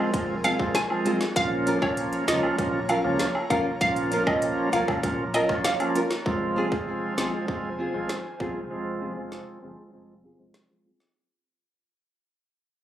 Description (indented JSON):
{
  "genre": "dancehall",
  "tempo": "98 BPM",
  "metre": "4/4",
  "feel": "straight",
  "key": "F minor",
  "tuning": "A4 = 440 Hz",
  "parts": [
    { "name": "bright tonewheel organ", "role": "accompaniment", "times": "0.0-10.9 s", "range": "F3 to F4", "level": "-28 LUFS", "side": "right 1 dB", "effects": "slow rotary speaker, sidechain pumping, low-pass filter" },
    { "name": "airy breathy pad", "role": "sustained chords", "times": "0.0-11.1 s", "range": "F4 to Bb5", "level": "-35 LUFS", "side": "right 1 dB", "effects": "chorus, sidechain pumping, low-pass filter" },
    { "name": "sub bass with octave", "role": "bass", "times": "0.1-10.5 s", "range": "F1 to Db2", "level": "-39 LUFS", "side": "equal", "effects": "none" },
    { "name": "island pop drum kit", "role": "drums", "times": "0.1-11.1 s", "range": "hi-hat, kick drum, rim click, snare drum", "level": "-29 LUFS", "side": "equal", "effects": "none" },
    { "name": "hollow square pluck", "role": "melody", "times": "0.4-6.1 s", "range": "Db5 to Ab5", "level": "-28 LUFS", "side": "right 1 dB", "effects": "chorus, phaser, digital delay" },
    { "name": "nylon-string guitar", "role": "arpeggios", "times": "0.4-11.0 s", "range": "Ab3 to Bb4", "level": "-30 LUFS", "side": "equal", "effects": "low-pass filter, digital delay" },
    { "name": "cabasa and woodblock", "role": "percussion", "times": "0.4-6.1 s", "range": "none", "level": "-32 LUFS", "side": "left 1 dB", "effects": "none" }
  ],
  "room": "light reverb",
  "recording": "recorded on a phone in the room, club reverb, compression",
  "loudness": "-23 LUFS",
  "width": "side -11 dB against mid",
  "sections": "0.0-6.3 A section; 6.3-11.2 B section",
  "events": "fade-out 6.3-11.2; filter sweep 6.3-11.2; break 8.7-11.2",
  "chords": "0.0 Fm; 1.4 Bbm; 6.3 Fm",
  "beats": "0.14 0.75 | 1.36 1.97 2.58 3.20 | 3.81 4.42 5.03 5.65 | 6.26 6.87 7.48 8.10 | 8.71 9.32 9.93 10.54"
}